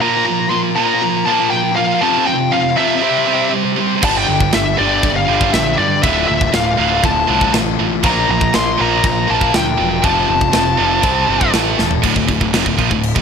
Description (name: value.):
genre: heavy metal.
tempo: 120 BPM.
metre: 4/4.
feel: straight.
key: D minor.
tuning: A4 = 440 Hz.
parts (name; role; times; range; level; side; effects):
high-gain lead guitar; melody; 0.0-11.5 s; D5 to C6; -17 LUFS; left 2 dB; distortion, tape echo.
heavy high-gain guitar; riff; 0.0-13.2 s; D2 to C4; -17 LUFS; right 12 dB; distortion.
sludgy distorted guitar; riff; 0.0-13.2 s; D2 to C5; -21 LUFS; left 14 dB; overdrive.
fuzz picked electric bass; bass; 4.0-13.2 s; D1 to G2; -21 LUFS; equal; overdrive.
tight metal drum kit; drums; 4.0-13.2 s; china cymbal, crash cymbal, kick drum, snare drum, toms; -19 LUFS; equal; none.
room: small room ambience.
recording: none.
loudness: -12 LUFS.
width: side -6 dB against mid.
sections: 0.0-12.0 A section; 12.0-13.2 B section.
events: drum fill 11.8.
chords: 0.0 Bb5; 2.0 F5; 3.0 C; 4.0 G5; 6.0 Dm; 8.0 Bb5; 10.0 F; 11.0 C5; 11.5 A5; 12.0 Dm.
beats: | 0.01 0.51 1.02 1.52 | 2.02 2.52 3.03 3.53 | 4.03 4.53 5.03 5.54 | 6.04 6.54 7.04 7.54 | 8.04 8.54 9.04 9.54 | 10.04 10.54 11.04 11.54 | 12.04 12.54 13.04.